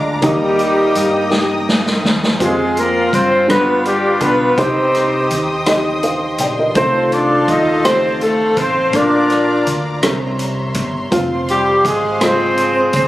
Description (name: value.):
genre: slow gospel.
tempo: 55 BPM (dotted quarters).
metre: 6/8.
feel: straight.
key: unclear.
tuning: A4 = 442 Hz.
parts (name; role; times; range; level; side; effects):
mellow horn section; melody; 0.0-13.1 s; Ab3 to Eb5; -16 LUFS; left 1 dB; tape echo.
dark upright piano; accompaniment; 0.0-13.1 s; G2 to G5; -20 LUFS; equal; none.
rich studio string section; sustained chords; 0.0-13.1 s; C5 to Eb6; -25 LUFS; left 1 dB; none.
hollow-body short-scale fingered electric bass; bass; 0.0-13.1 s; F1 to G2; -26 LUFS; equal; none.
breathy tenor saxophone; melody; 0.2-13.1 s; G3 to Eb4; -20 LUFS; right 2 dB; tape echo.
swinging big-band drum kit; drums; 0.2-13.1 s; hi-hat, kick drum, rim click, snare drum; -21 LUFS; equal; none.
room: light reverb, studio reverb.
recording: recorded on a phone in the room, club reverb.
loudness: -13 LUFS.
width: side -15 dB against mid.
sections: 0.0-13.1 A section.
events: drum fill 1.3-2.4.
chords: 0.2 Eb; 2.4 Fm; 3.5 G7; 4.6 Cm; 6.8 F7/C; 8.9 Bb; 10.0 C7b9; 11.1 Fm.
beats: | 0.22 1.31 | 2.40 3.49 | 4.58 5.67 | 6.76 7.85 | 8.94 10.03 | 11.12 12.21.